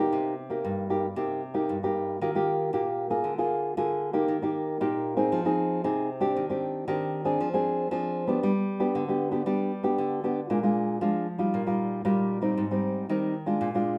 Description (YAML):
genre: samba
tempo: 116 BPM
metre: 4/4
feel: straight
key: C minor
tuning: A4 = 441 Hz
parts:
  - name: nylon-string guitar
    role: solo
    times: 0.0-14.0 s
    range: G2 to Ab4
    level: -28 LUFS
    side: equal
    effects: none
room: moderate studio reverb, RT60 0.8 s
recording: none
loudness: -28 LUFS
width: mono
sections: 0.0-2.2 A section; 2.2-14.0 B section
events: none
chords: 0.1 Cm7; 2.2 Ebadd9; 3.2 Bb7/D; 4.3 Eb; 5.3 Fm7; 6.4 Cmadd9/Eb; 7.4 Dm7b5/F; 8.4 G; 10.5 Bb7; 11.5 Ebadd9/Bb; 12.6 Abmaj7